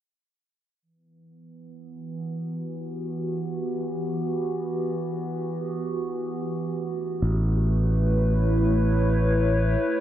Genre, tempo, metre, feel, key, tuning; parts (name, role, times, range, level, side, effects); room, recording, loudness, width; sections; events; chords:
ambient dub; free time; E dorian; A4 = 440 Hz
warbly tape-like pad; sustained chords; 1.7-10.0 s; E3 to C#5; -27 LUFS; right 1 dB; chorus, built-in reverb, phaser
modern bright fingered electric bass; bass; 7.2-9.7 s; A1; -21 LUFS; equal
moderate spring reverb, RT60 1.4 s, digital ambience; low-pass filter; -23 LUFS; side -11 dB against mid
0.8-10.0 A section
filter sweep 0.8-10.0
0.8 Em; 6.7 A7